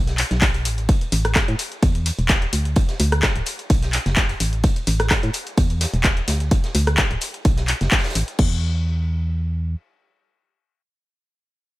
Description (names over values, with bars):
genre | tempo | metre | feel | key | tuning
piano house | 128 BPM | 4/4 | swing 54% on 16ths | unclear | A4 = 436 Hz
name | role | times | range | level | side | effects
organ-like FM bass | bass | 0.0-9.8 s | D1 to A2 | -21 LUFS | equal | sidechain pumping
punchy analog drum machine | drums | 0.1-8.5 s | crash cymbal, handclaps, hi-hat, rim click | -23 LUFS | left 1 dB | none
raw garage drum kit | drums | 0.1-8.3 s | hi-hat, snare drum | -33 LUFS | right 2 dB | high-pass filter on hats, high-pass filter on snare, high-pass filter on room
electronic kick drum | drums | 0.4-8.5 s | none | -19 LUFS | equal | none
room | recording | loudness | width
little or no reverb | none | -18 LUFS | side -18 dB against mid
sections
0.0-8.4 A section; 8.4-11.8 B section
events
drop 0.0-8.4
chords
none